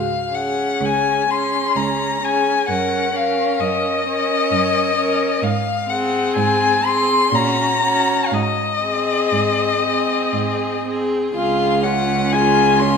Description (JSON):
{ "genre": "classical, slow romantic movement for string quartet", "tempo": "59-66 BPM", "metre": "3/4", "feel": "rubato", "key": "Db major", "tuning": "A4 = 440 Hz", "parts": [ { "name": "rich violin", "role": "melody", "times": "0.0-13.0 s", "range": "Eb5 to C6", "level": "-18 LUFS", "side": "left 5 dB", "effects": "none" }, { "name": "clear cello", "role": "bass", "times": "0.0-13.0 s", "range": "Db2 to Bb2", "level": "-25 LUFS", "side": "right 6 dB", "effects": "none" }, { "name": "rich violin", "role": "second line", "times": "0.3-13.0 s", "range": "F4 to Bb4", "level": "-24 LUFS", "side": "left 1 dB", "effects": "none" }, { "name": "rich viola", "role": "accompaniment", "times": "0.3-13.0 s", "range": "C4 to F4", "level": "-24 LUFS", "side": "right 4 dB", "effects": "none" } ], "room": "wet scoring stage reverb, RT60 1.9 s", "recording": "minimal, uncompressed stereo recording", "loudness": "-16 LUFS", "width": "side -6 dB against mid", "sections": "0.0-13.0 A section", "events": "none", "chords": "0.0 Db5; 2.7 Gb; 5.4 Ab; 7.3 Gb/Bb; 8.3 Ab; 11.3 Db" }